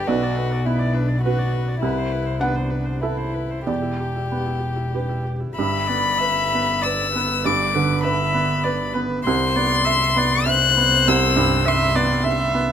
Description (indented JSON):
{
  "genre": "neoclassical piano and strings",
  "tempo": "92-104 BPM",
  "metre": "3/4",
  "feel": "rubato",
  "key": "G major",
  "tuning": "A4 = 441 Hz",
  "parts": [
    { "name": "rich violin", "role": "melody", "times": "0.0-12.6 s", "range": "D4 to F#6", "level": "-22 LUFS", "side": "left 5 dB", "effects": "none" },
    { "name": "felt-muted upright piano", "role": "accompaniment", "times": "0.0-12.7 s", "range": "B1 to F#5", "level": "-24 LUFS", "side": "right 4 dB", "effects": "none" },
    { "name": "warm viola", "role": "accompaniment", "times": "0.0-12.7 s", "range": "E4 to E5", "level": "-27 LUFS", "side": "right 2 dB", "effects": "none" },
    { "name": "warm double bass", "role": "bass", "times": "0.0-12.7 s", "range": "E1 to C2", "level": "-25 LUFS", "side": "equal", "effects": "none" }
  ],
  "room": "light reverb",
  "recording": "minimal, uncompressed stereo recording",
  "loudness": "-18 LUFS",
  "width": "side -8 dB against mid",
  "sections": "0.0-5.6 A section; 5.6-12.7 B section",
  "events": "none",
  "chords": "0.1 Bm; 1.8 Amadd9/C; 3.7 Em7; 5.6 G; 9.2 Cmaj7"
}